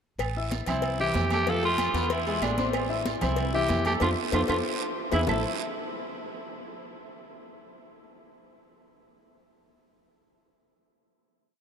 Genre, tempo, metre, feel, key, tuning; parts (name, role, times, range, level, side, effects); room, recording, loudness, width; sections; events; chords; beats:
latin, salsa; 189 BPM; 4/4; straight; A minor; A4 = 439 Hz
upright bass; bass; 0.2-5.4 s; A1 to F2; -31 LUFS; equal
agogo bells and timbales; percussion; 0.2-5.4 s; -36 LUFS; right 7 dB
claves; percussion; 0.2-5.4 s; -41 LUFS; right 10 dB
congas; percussion; 0.2-5.4 s; -35 LUFS; equal
cowbell and bongos; percussion; 0.2-5.3 s; -37 LUFS; left 6 dB
guiro; percussion; 0.2-5.4 s; -40 LUFS; right 12 dB
clear grand piano; accompaniment; 0.4-5.4 s; E3 to E6; -31 LUFS; left 3 dB
raspy tenor saxophone; melody; 0.7-5.4 s; D4 to A4; -30 LUFS; right 1 dB
wet huge ambient reverb, RT60 7.3 s; in a vast, echoing space; -24 LUFS; side -7 dB against mid
0.2-5.3 montuno (vamp); 5.3-6.5 final chord
band accent 4.0-5.3; drum fill 4.5-5.3
0.2 Am; 0.8 C; 1.5 F; 2.1 E; 2.7 Am; 3.4 C; 4.0 F; 4.6 E; 5.3 A5
| 0.20 0.52 0.83 1.15 | 1.47 1.79 2.10 2.42 | 2.74 3.06 3.38 3.69 | 4.01 4.33 4.65 4.96 | 5.28